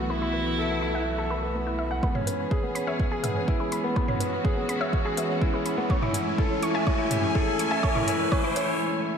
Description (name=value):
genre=piano and strings electronica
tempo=124 BPM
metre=4/4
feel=straight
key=C# minor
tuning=A4 = 440 Hz
part: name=dark studio string section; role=sustained chords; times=0.0-9.2 s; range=E3 to G#5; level=-31 LUFS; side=right 1 dB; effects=sidechain pumping, shimmer reverb
part: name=warm grand piano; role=riff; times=0.0-9.2 s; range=B3 to F#5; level=-28 LUFS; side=left 1 dB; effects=ping-pong delay, shimmer reverb
part: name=round analog bass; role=bass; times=0.0-2.0 s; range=B1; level=-33 LUFS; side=equal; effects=sidechain pumping
part: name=rich viola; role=melody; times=0.1-1.5 s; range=E4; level=-33 LUFS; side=left 1 dB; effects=ping-pong delay, shimmer reverb
part: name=analog pluck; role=arpeggios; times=0.1-8.5 s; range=B4 to C#6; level=-34 LUFS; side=left 1 dB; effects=chorus, sidechain pumping, ping-pong delay, shimmer reverb
part: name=electronic kick drum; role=drums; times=2.0-8.4 s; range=none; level=-26 LUFS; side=equal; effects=overdrive
part: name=riser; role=sound effects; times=4.4-8.8 s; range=none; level=-35 LUFS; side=equal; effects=none
part: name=deep house drum kit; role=drums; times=2.2-8.7 s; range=hi-hat, toms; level=-32 LUFS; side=right 1 dB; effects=overdrive
room=wet lush hall reverb, RT60 1.8 s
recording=dreamy mix soaked in reverb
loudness=-23 LUFS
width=side -7 dB against mid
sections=0.0-2.0 A section; 2.0-9.2 B section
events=filter sweep on synth arpeggio sound 0.0-2.0; build-up 2.0-9.2; riser 4.4-8.8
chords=0.0 B7sus4; 2.0 C#m7; 5.9 Amaj7